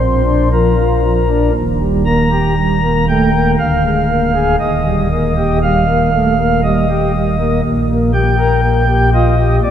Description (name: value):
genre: classical, chorale-style piece for pipe organ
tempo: 59 BPM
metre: 3/4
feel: rubato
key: unclear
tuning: A4 = 441 Hz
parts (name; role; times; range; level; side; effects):
- pipe organ, flutes; solo; 0.0-9.7 s; D1 to Bb5; -11 LUFS; equal; none
room: wet cathedral reverb, RT60 5.0 s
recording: minimal, uncompressed stereo recording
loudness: -11 LUFS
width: side -9 dB against mid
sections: 0.0-9.7 A section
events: none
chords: 0.0 Bb; 1.5 Eb; 3.6 Bb7/D; 4.6 Eb; 7.6 Gm/Bb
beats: 0.52 | 1.55 2.57 3.59 | 4.59 5.61 6.62 | 7.63 8.62 9.62